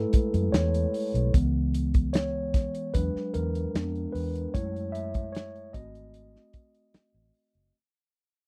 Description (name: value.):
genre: lush 1970s-style soul.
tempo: 75 BPM.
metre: 4/4.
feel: straight.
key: F# minor.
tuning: A4 = 439 Hz.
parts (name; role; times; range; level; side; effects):
mellow tine electric piano; accompaniment; 0.0-7.8 s; E3 to E5; -33 LUFS; equal; none.
vintage muted fingered electric bass; bass; 0.0-7.7 s; F#1 to F#2; -32 LUFS; equal; none.
warm soul drum kit; drums; 0.1-7.7 s; hi-hat, kick drum, snare drum; -27 LUFS; equal; none.
room: little or no reverb.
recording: dry, close 1970s-style studio recording.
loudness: -28 LUFS.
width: mono.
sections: 0.0-1.3 A section; 1.3-7.7 B section.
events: tine electric piano solo 0.0-1.3, 1.3-7.7; fade-out 1.3-7.7.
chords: 0.0 F#m7 (rootless); 1.3 C#m7; 2.9 E9; 3.7 Fdim7; 4.5 F#m9; 5.7 G#7b9.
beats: 0.54 | 1.34 2.14 2.94 3.74 | 4.54 5.34 6.14 6.94.